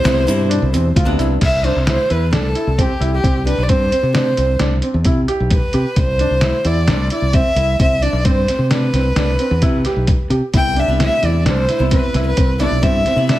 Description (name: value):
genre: progressive instrumental, band music in an uneven meter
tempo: 132 BPM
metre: 5/4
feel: straight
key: C major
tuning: A4 = 440 Hz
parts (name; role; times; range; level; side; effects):
- dark violin; melody; 0.0-13.4 s; G4 to G5; -20 LUFS; equal; digital delay
- archtop guitar, miked and amplified; accompaniment; 0.0-1.4, 10.5-13.4 s; B2 to E4; -22 LUFS; equal; none
- warm baby grand piano; arpeggios; 0.0-13.4 s; C4 to G4; -23 LUFS; right 1 dB; digital delay
- modern bright fingered electric bass; bass; 0.0-13.4 s; B1 to C3; -18 LUFS; equal; none
- trip hop sampler-style drum kit; drums; 0.1-13.4 s; crash cymbal, hi-hat, kick drum, snare drum; -18 LUFS; equal; none
- tube shaker; percussion; 0.1-1.3 s; none; -38 LUFS; left 6 dB; none
room: light reverb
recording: heavily compressed radio sound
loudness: -13 LUFS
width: side -15 dB against mid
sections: 0.0-1.4 A section; 1.4-13.4 B section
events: none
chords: 0.0 Cmaj7